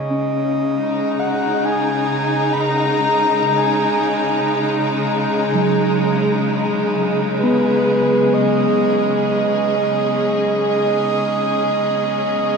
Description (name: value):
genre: ambient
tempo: 63 BPM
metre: 4/4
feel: straight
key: unclear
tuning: A4 = 438 Hz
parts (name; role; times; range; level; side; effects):
- breathy flute-like synth lead; melody; 0.0-12.6 s; B4 to B5; -21 LUFS; right 2 dB; chorus, ping-pong delay
- rich studio string section; sustained chords; 0.0-12.6 s; C#3 to A#5; -18 LUFS; equal; none
- muted felt-like synth keys; arpeggios; 0.0-12.6 s; F#3 to D#6; -24 LUFS; left 2 dB; chorus, ping-pong delay
- pedal harmonium; drone; 0.0-12.6 s; C#3 to G#3; -35 LUFS; left 2 dB; none
room: wet plate reverb, RT60 3.9 s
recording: dreamy mix soaked in reverb, cassette tape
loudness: -15 LUFS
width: side -5 dB against mid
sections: 0.0-12.6 A section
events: none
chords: 0.0 G#m/C#